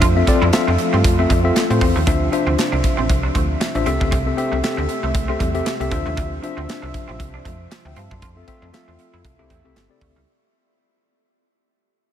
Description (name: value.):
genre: early-eighties boogie funk.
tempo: 117 BPM.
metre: 4/4.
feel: swing 56% on 16ths.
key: D minor.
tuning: A4 = 439 Hz.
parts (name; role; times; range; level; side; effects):
mellow tine electric piano; accompaniment; 0.0-10.2 s; C4 to C6; -21 LUFS; left 3 dB; medium stereo tremolo.
brassy analog pad; sustained chords; 0.0-10.3 s; C3 to E5; -28 LUFS; right 1 dB; chorus, tremolo.
semi-hollow electric guitar; riff; 0.0-10.3 s; G3 to F4; -28 LUFS; right 4 dB; lush chorus.
slap-like FM bass; bass; 0.0-10.3 s; G1 to A2; -21 LUFS; equal; none.
modern studio drum kit; drums; 0.0-10.2 s; handclaps, hi-hat, kick drum, snare drum; -22 LUFS; right 1 dB; none.
room: moderate huge ambient reverb, RT60 8.2 s.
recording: dreamy mix soaked in reverb.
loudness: -16 LUFS.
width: side -10 dB against mid.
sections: 0.0-10.3 A section.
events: fade-out 0.0-10.3.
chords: 0.0 Fmaj7; 2.1 Dm9; 3.9 C6; 5.9 Dm9; 8.2 Fmaj7; 9.2 C6.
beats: | 0.02 0.53 1.04 1.56 | 2.07 2.58 3.10 3.61 | 4.12 4.63 5.15 5.66 | 6.17 6.68 7.20 7.71 | 8.22 8.74 9.25 9.76.